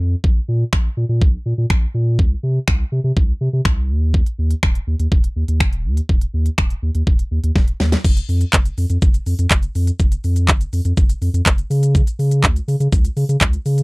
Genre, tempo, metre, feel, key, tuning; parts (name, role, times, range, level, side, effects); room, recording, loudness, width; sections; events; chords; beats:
dance-pop; 123 BPM; 4/4; straight; A4 = 441 Hz
warm sub bass; bass; 0.0-13.8 s; Eb1 to Db3; -18 LUFS; equal; sidechain pumping
pop drum kit; drums; 0.2-13.8 s; crash cymbal, finger snaps, handclaps, hi-hat, kick drum, shaker, snare drum; -16 LUFS; equal
little or no reverb; dry, close 1970s-style studio recording; -15 LUFS; side -26 dB against mid
0.0-8.0 A section; 8.0-13.8 B section
drum fill 7.6-8.0
| 0.24 0.73 1.22 1.70 | 2.19 2.68 3.17 3.65 | 4.14 4.63 5.12 5.61 | 6.09 6.58 7.07 7.56 | 8.04 8.53 9.02 9.51 | 10.00 10.48 10.97 11.46 | 11.95 12.44 12.92 13.41